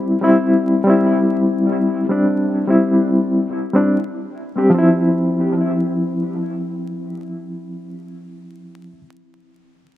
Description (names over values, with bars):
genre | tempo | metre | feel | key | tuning
trip hop | 73 BPM | 4/4 | swing 57% on 16ths | unclear | A4 = 440 Hz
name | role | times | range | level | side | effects
barky reed electric piano | accompaniment | 0.0-9.0 s | F3 to G4 | -16 LUFS | left 1 dB | overdrive, medium tremolo, vintage 12-bit sampler grit, low-pass filter, tape echo
room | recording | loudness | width
moderate plate reverb, RT60 3.4 s | echo-heavy mix, vinyl crackle | -15 LUFS | side -13 dB against mid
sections
0.0-4.7 A section; 4.7-8.0 B section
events
none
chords
0.0 C; 4.7 Cadd11/F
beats
0.63 | 1.45 2.27 3.10 3.92 | 4.74 5.56 6.38 7.21